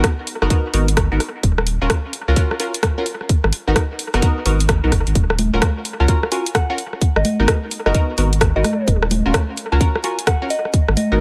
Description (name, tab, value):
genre	UK garage, two-step garage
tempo	129 BPM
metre	4/4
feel	swing 64% on 16ths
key	Eb minor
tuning	A4 = 438 Hz
part	punchy chord stab	stabs	0.0-11.2 s	Cb4 to Bb4	-26 LUFS	equal	chorus, phaser, dub echo
part	saturated sub bass	bass	0.0-11.2 s	Eb1 to Db2	-20 LUFS	equal	none
part	electronic kick drum	drums	0.0-10.9 s	none	-20 LUFS	equal	none
part	garage drum kit	drums	0.0-11.1 s	congas, hi-hat, rim click	-23 LUFS	equal	dub echo
part	soft synth bell	melody	6.0-11.1 s	Eb5 to Bb5	-28 LUFS	equal	chorus, phaser, dub echo
room	little or no reverb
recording	echo-heavy mix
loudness	-18 LUFS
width	mono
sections	0.0-11.2 A section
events	none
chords	0.0 Abm9; 1.4 Ebm9; 3.3 Abm9; 5.2 Ebm9; 7.0 Abm9; 8.9 Ebm9